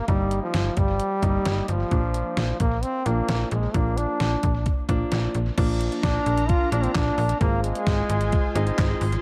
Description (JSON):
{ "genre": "synth-pop", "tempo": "131 BPM", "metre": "4/4", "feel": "straight", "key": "unclear", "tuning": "A4 = 436 Hz", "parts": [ { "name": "bright trombone", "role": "melody", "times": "0.0-9.0 s", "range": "F3 to F4", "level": "-29 LUFS", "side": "equal", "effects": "tape echo" }, { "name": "warm grand piano", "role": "accompaniment", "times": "0.1-9.0 s", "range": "F3 to F4", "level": "-33 LUFS", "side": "equal", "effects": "tape echo" }, { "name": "slap-like FM bass", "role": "bass", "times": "0.1-9.2 s", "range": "G1 to Bb1", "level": "-28 LUFS", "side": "equal", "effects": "none" }, { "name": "detuned 8-bit digital drum machine", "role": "drums", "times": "0.1-9.2 s", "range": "crash cymbal, handclaps, hi-hat, kick drum, snare drum", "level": "-28 LUFS", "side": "equal", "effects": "none" }, { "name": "phased analog pad", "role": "sustained chords", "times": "6.0-9.2 s", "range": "D4 to C6", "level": "-36 LUFS", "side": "equal", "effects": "phaser, chorus" } ], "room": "moderate spring reverb, RT60 2.0 s", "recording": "echo-heavy mix", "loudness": "-23 LUFS", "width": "mono", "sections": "0.0-5.6 A section; 5.6-9.2 B section", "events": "none", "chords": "0.1 Eb/G; 1.9 Bb; 7.4 Fm/Ab", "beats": "| 0.08 0.54 1.00 1.46 | 1.91 2.37 2.83 3.29 | 3.75 4.20 4.66 5.12 | 5.58 6.04 6.49 6.95 | 7.41 7.87 8.32 8.78" }